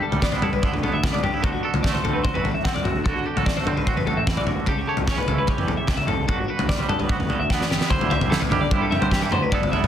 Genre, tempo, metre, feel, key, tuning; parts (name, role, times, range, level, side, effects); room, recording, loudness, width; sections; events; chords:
math rock and midwest emo; 148 BPM; 4/4; straight; A4 = 440 Hz
twangy electric guitar; accompaniment; 0.0-9.9 s; G2 to C#5; -27 LUFS; right 7 dB; tremolo
clean electric guitar; arpeggios; 0.0-9.9 s; F#4 to F#5; -27 LUFS; left 4 dB; wide subtle chorus
fuzz picked electric bass; bass; 0.1-9.9 s; G1 to G3; -28 LUFS; equal; overdrive
loose indie drum kit; drums; 0.1-9.9 s; kick drum, snare drum, toms; -22 LUFS; equal
light reverb; dense, heavily limited modern master; -20 LUFS; side -10 dB against mid
0.0-7.9 A section; 7.9-9.9 B section
drum fill 7.5-7.9
0.0 G69; 1.4 D7; 4.7 A7/C#; 6.3 Gmaj9; 7.9 D9sus4